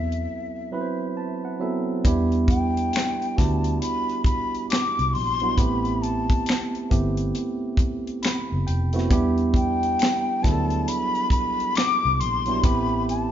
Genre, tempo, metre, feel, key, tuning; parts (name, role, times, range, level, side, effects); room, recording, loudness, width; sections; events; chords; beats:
R&B, neo-soul; 68 BPM; 4/4; swing 63% on 16ths; E minor; A4 = 440 Hz
breathy concert flute; melody; 0.0-13.3 s; E5 to D6; -26 LUFS; left 4 dB
tine electric piano; accompaniment; 0.0-13.3 s; F#3 to B5; -26 LUFS; right 4 dB
vintage muted fingered electric bass; bass; 0.0-13.3 s; F1 to E2; -26 LUFS; equal
tight funk drum kit; drums; 0.1-13.3 s; finger snaps, hi-hat, kick drum, snare drum; -24 LUFS; equal
moderate large studio reverb, RT60 1.3 s; band playing live in one room, nothing above 7.5 kHz; -21 LUFS; side -10 dB against mid
0.0-2.0 A section; 2.0-13.3 B section
break 0.3-2.0; tine electric piano fill 0.3-2.0, 7.8-9.1
0.0 D13 (rootless); 2.0 Em9; 5.6 Am9; 9.1 Em9; 12.6 Am9
0.28 1.16 | 2.04 2.93 3.81 4.69 | 5.57 6.46 7.34 8.22 | 9.10 9.98 10.87 11.75 | 12.63